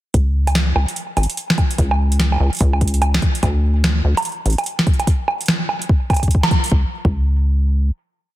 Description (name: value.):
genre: IDM.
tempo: 146 BPM.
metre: 4/4.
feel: swing 62% on 16ths.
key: unclear.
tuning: A4 = 440 Hz.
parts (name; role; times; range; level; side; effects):
deep acid bass; bass; 0.1-7.9 s; G#1 to D2; -16 LUFS; equal; none.
booming analog drum machine; drums; 0.1-6.7 s; bongos, hi-hat, snare drum; -20 LUFS; right 1 dB; tape echo.
electronic kick drum; drums; 0.1-7.2 s; none; -16 LUFS; equal; none.
room: light reverb.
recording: dense, heavily limited modern master.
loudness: -15 LUFS.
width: side -15 dB against mid.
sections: 0.1-6.7 groove; 6.7-8.4 final note.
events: band accent 6.4.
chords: none.